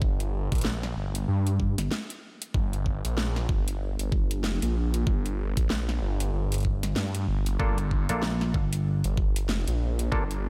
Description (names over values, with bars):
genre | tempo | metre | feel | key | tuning
glitch hop | 95 BPM | 4/4 | swing 59% on 16ths | G minor | A4 = 440 Hz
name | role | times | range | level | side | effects
phased detuned saw bass | bass | 0.0-10.5 s | G1 to G2 | -30 LUFS | equal | phaser, overdrive
electronic kick drum | drums | 0.0-10.3 s | none | -29 LUFS | equal | studio ambience
dubstep drum kit | drums | 0.2-10.4 s | hi-hat, snare drum | -36 LUFS | equal | studio ambience
clav | stabs | 7.6-10.2 s | Bb3 to A4 | -36 LUFS | equal | sidechain pumping, low-pass filter, analog delay
vintage slap bass | bass | 8.1-9.0 s | G1 to Bb1 | -29 LUFS | equal | none
room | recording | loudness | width
little or no reverb | none | -28 LUFS | mono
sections
0.0-10.5 A section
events
none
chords
0.0 Gm